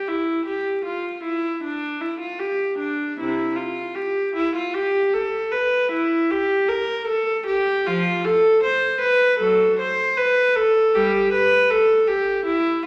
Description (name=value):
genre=classical, baroque-style suite movement for unaccompanied viola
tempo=78 BPM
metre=4/4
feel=rubato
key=unclear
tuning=A4 = 442 Hz
part: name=warm viola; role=solo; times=0.0-12.8 s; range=C3 to C5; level=-21 LUFS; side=equal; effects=none
room=wet recital hall reverb, RT60 1.3 s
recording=vinyl crackle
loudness=-21 LUFS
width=mono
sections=0.0-12.9 A section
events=none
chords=none